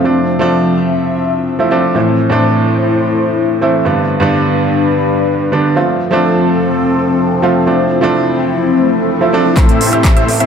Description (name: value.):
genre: EDM, festival progressive house.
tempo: 126 BPM.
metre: 4/4.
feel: straight.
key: A minor.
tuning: A4 = 444 Hz.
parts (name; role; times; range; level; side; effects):
clear baby grand piano; accompaniment; 0.0-10.5 s; G2 to A4; -13 LUFS; right 2 dB; sidechain pumping, ping-pong delay.
lush unison pad; sustained chords; 0.0-10.5 s; F3 to C6; -15 LUFS; left 3 dB; chorus, phaser, sidechain pumping.
swell; sound effects; 8.8-9.6 s; none; -18 LUFS; equal; none.
wide unison pluck; arpeggios; 9.6-10.5 s; E5; -20 LUFS; equal; cassette tape, sidechain pumping, ping-pong delay.
dense compressed supersaw; riff; 9.6-10.5 s; A3 to E5; -16 LUFS; left 2 dB; sidechain pumping, low-pass filter, ping-pong delay.
fat analog bass; bass; 9.6-10.4 s; A1; -24 LUFS; left 1 dB; none.
big-room dance drum kit; drums; 9.6-10.5 s; handclaps, hi-hat; -18 LUFS; right 2 dB; none.
electronic kick drum; drums; 9.6-10.1 s; none; -10 LUFS; equal; none.
room: moderate recital hall reverb, RT60 1.4 s, digital ambience.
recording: none.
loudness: -10 LUFS.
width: side -7 dB against mid.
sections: 0.0-9.6 A section.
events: swell 8.8-9.6; drum fill 9.6-10.5.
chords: 0.0 Dm7/F; 2.0 Am; 3.9 G; 5.8 F; 7.7 Dm7/F; 9.6 Am.